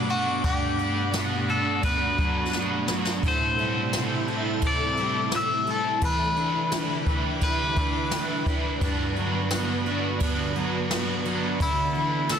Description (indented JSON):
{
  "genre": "dream pop",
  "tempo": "86 BPM",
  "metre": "4/4",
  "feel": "straight",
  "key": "G major",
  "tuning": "A4 = 436 Hz",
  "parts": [
    { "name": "raw garage guitar", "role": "accompaniment", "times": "0.0-12.4 s", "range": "A2 to B4", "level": "-30 LUFS", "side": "right 2 dB", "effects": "overdrive, harmonic tremolo, lush chorus" },
    { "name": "ethereal airy pad", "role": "sustained chords", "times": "0.0-12.4 s", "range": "B2 to F#5", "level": "-31 LUFS", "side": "right 2 dB", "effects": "ensemble chorus, built-in reverb" },
    { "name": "mellow electric guitar", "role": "arpeggios", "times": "0.0-12.4 s", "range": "G2 to B4", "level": "-30 LUFS", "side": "equal", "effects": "ensemble chorus, ping-pong delay" },
    { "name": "drifting glass-harmonics texture", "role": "texture", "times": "0.0-12.3 s", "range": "G5 to E6", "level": "-40 LUFS", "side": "equal", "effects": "chorus, built-in reverb, ping-pong delay" },
    { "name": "electric guitar at the edge of break-up", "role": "melody", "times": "0.1-12.4 s", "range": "E4 to E5", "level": "-27 LUFS", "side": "left 3 dB", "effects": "phaser, ping-pong delay" },
    { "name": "jazz brush drum kit", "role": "drums", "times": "0.1-12.4 s", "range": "kick drum, ride cymbal, snare drum, tambourine", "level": "-29 LUFS", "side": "equal", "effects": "none" }
  ],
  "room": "moderate concert hall reverb, RT60 2.2 s",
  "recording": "dense, heavily limited modern master",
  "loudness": "-23 LUFS",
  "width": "side -8 dB against mid",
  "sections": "0.0-12.4 A section",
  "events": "drum fill 2.5-3.2",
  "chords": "0.0 Gmaj7; 3.2 Am7; 6.0 Em7; 8.8 Gmaj7; 11.6 Dsus2",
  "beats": "| 0.44 1.14 1.83 2.53 | 3.23 3.93 4.62 5.32 | 6.02 6.72 7.41 8.11 | 8.81 9.51 10.21 10.90 | 11.60 12.30"
}